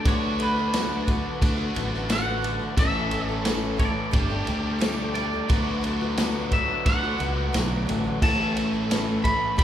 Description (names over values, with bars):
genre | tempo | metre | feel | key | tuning
folk rock and heartland rock | 88 BPM | 4/4 | straight | D major | A4 = 440 Hz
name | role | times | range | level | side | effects
twangy electric guitar | melody | 0.0-9.6 s | B4 to B5 | -29 LUFS | right 1 dB | none
picked old ladder-braced acoustic guitar | accompaniment | 0.0-9.6 s | A2 to A4 | -31 LUFS | left 4 dB | none
tonewheel organ | sustained chords | 0.0-9.6 s | G4 to D6 | -38 LUFS | equal | slow rotary speaker, overdrive, chorus vibrato
crunchy overdriven guitar | riff | 0.0-9.6 s | A2 to A4 | -31 LUFS | right 1 dB | none
fingered electric bass | bass | 0.1-9.6 s | G1 to D2 | -28 LUFS | equal | none
vintage drum kit | drums | 0.1-9.6 s | crash cymbal, kick drum, ride cymbal, snare drum | -26 LUFS | equal | none
tambourine | percussion | 0.7-9.1 s | none | -44 LUFS | right 7 dB | none
room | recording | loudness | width
moderate recital hall reverb, RT60 1.8 s | recorded in a church or concert hall | -22 LUFS | side -10 dB against mid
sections
0.0-9.6 A section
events
none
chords
0.1 D6; 2.8 A; 4.1 Gsus2; 5.5 D6; 8.2 A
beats
| 0.06 0.74 1.42 2.10 | 2.78 3.46 4.14 4.82 | 5.50 6.18 6.86 7.54 | 8.22 8.90 9.58